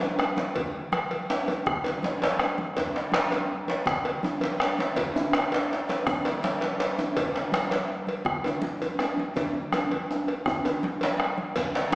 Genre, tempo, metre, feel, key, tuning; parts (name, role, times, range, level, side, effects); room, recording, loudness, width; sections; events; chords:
west african traditional, West African drum ensemble; 109 BPM (dotted quarters); 12/8; straight
congas; percussion; 0.0-11.9 s; -35 LUFS; equal
cowbell; percussion; 0.0-11.9 s; -32 LUFS; equal
djembe; percussion; 0.0-11.9 s; -44 LUFS; left 1 dB
djembe; percussion; 0.0-11.9 s; -28 LUFS; equal
bombo; percussion; 0.2-11.8 s; -31 LUFS; equal
shekere; percussion; 11.6-11.7 s; -42 LUFS; equal
wet scoring stage reverb, RT60 1.7 s; heard from further back in the room, small speaker sound; -25 LUFS; side -26 dB against mid
0.0-11.6 A section
drum fill 2.0-2.8, 9.4-11.6